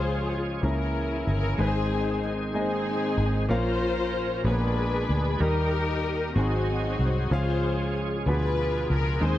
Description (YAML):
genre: gospel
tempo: 63 BPM (dotted quarters)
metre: 6/8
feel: straight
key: Ab major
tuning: A4 = 439 Hz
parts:
  - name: dark studio string section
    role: melody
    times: 0.0-9.4 s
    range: C4 to C5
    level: -29 LUFS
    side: left 3 dB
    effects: slapback echo
  - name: clear baby grand piano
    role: accompaniment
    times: 0.0-9.4 s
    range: Ab2 to F5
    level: -30 LUFS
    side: left 1 dB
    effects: none
  - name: bright tonewheel organ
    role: sustained chords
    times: 0.0-9.4 s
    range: Eb3 to Cb5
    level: -34 LUFS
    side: right 3 dB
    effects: slow rotary speaker, overdrive, chorus vibrato
  - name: fingered electric bass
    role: bass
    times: 0.0-9.4 s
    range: G1 to Eb2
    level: -27 LUFS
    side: equal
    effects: none
room: light reverb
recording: dark, warm production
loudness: -24 LUFS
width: side -13 dB against mid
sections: 0.0-9.4 A section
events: none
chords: 0.0 Db; 0.6 Dbm6; 1.6 Ab; 3.5 Bbm; 4.5 Bb7b9; 5.4 Eb; 6.4 Ab7; 7.3 Db; 8.3 Ddim7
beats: 0.63 | 1.59 2.54 | 3.50 4.45 | 5.41 6.36 | 7.31 8.27 | 9.22